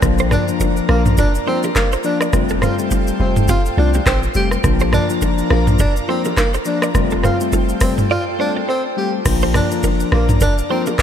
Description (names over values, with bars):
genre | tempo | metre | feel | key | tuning
afrobeats | 104 BPM | 4/4 | swing 58% on 16ths | Bb major | A4 = 441 Hz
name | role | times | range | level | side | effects
tine electric piano | accompaniment | 0.0-10.9 s | F3 to F4 | -21 LUFS | left 6 dB | wide subtle chorus
airy breathy pad | sustained chords | 0.0-11.0 s | F4 to Bb5 | -26 LUFS | right 1 dB | chorus
punchy sub bass | bass | 0.0-10.5 s | F1 to C2 | -18 LUFS | equal | none
booming analog drum machine | drums | 0.0-11.0 s | crash cymbal, handclaps, hi-hat, kick drum, rim click, shaker, toms | -18 LUFS | equal | none
congas and bongos | percussion | 0.0-11.0 s | none | -29 LUFS | right 5 dB | none
direct-recorded clean electric guitar | riff | 0.2-10.9 s | C4 to D5 | -26 LUFS | right 5 dB | analog chorus, digital delay
breathy tenor saxophone | melody | 0.3-11.0 s | Bb3 to G4 | -22 LUFS | right 1 dB | digital delay
room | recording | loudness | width
light reverb, digital ambience | bright 1980s-style digital production | -14 LUFS | side -9 dB against mid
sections
0.0-9.3 A section; 9.3-11.0 A section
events
break 8.1-9.3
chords
0.0 Bb; 2.3 Fadd9; 4.6 Bb; 6.9 Fadd9; 9.3 Bb